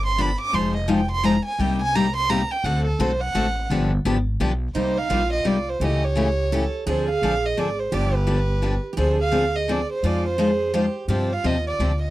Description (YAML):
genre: acoustic string swing (jazz manouche)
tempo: 170 BPM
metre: 3/4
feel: swing 60% on 8ths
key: C minor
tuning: A4 = 438 Hz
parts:
  - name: warm violin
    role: melody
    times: 0.0-12.1 s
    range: A4 to D6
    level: -25 LUFS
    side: right 2 dB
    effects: none
  - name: upright bass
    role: bass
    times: 0.0-12.1 s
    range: F1 to G2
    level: -24 LUFS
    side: equal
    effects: none
  - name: picked steel-string acoustic guitar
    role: accompaniment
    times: 0.2-11.9 s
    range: C3 to C5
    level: -23 LUFS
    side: left 3 dB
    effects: none
  - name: picked steel-string acoustic guitar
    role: second line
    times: 4.7-12.1 s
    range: Eb4 to A4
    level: -28 LUFS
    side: right 4 dB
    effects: none
room: little or no reverb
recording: dry, close 1970s-style studio recording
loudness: -20 LUFS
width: side -15 dB against mid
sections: 0.0-4.8 A section; 4.8-12.1 B section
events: violin solo 0.0-4.8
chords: 0.0 G7; 0.5 Fm7; 1.6 Cm7; 2.6 D7; 3.7 G7b9; 4.8 Cm7; 5.8 A7/C#; 6.9 Dm7b5; 7.9 G7; 9.0 Dm7b5; 10.0 Fm7; 11.1 G7sus4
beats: 0.19 | 0.54 0.89 1.24 | 1.59 1.95 2.30 | 2.65 3.00 3.35 | 3.70 4.05 4.40 | 4.75 5.11 5.46 | 5.81 6.16 6.51 | 6.87 7.22 7.57 | 7.92 8.28 8.63 | 8.98 9.33 9.68 | 10.04 10.39 10.74 | 11.09 11.44 11.80